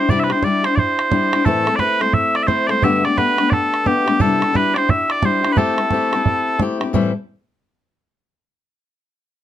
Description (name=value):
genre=celtic folk, Celtic hornpipe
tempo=175 BPM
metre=4/4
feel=swing 62% on 8ths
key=A minor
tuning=A4 = 439 Hz
part: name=mellow small bagpipes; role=melody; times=0.0-6.6 s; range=G4 to E5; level=-18 LUFS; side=right 1 dB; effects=none
part: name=fingerpicked steel-string acoustic guitar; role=accompaniment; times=0.0-7.1 s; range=G2 to A4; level=-19 LUFS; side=left 4 dB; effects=none
part: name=bodhran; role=percussion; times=0.1-7.1 s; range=none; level=-21 LUFS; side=right 4 dB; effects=none
room=light reverb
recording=none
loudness=-15 LUFS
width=side -11 dB against mid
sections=0.0-6.9 A section; 6.9-8.3 B section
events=none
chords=0.0 Cadd9; 1.5 Am; 2.8 Gadd9; 4.2 Cadd9; 5.6 Am7